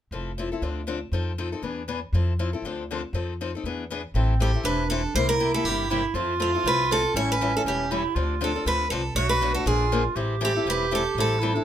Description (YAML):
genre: acoustic string swing (jazz manouche)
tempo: 239 BPM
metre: 4/4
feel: swing 57% on 8ths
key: A minor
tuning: A4 = 440 Hz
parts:
  - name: picked steel-string acoustic guitar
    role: accompaniment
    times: 0.1-11.6 s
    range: B2 to A4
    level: -29 LUFS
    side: left 5 dB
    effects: none
  - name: upright bass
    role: bass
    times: 0.1-11.6 s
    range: E1 to F2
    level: -28 LUFS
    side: equal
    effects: none
  - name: warm clarinet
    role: second line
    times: 4.1-11.6 s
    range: C4 to G4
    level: -28 LUFS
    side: right 6 dB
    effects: none
  - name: picked steel-string acoustic guitar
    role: melody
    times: 4.4-11.6 s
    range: F4 to C#5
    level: -25 LUFS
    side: right 1 dB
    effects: none
room: light reverb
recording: minimal, uncompressed stereo recording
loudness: -22 LUFS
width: side -10 dB against mid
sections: 0.1-4.1 A section; 4.1-11.6 B section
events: none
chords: 0.1 Fmaj7; 0.6 Dm7; 1.1 F7; 1.6 E7; 2.1 Fmaj7; 2.6 Dm7; 3.1 F7; 3.6 E7; 4.1 Am7; 5.1 C7; 6.2 Fmaj7; 7.2 A7; 8.2 Dm7; 9.2 Bm7; 9.7 Bb7; 10.2 Am7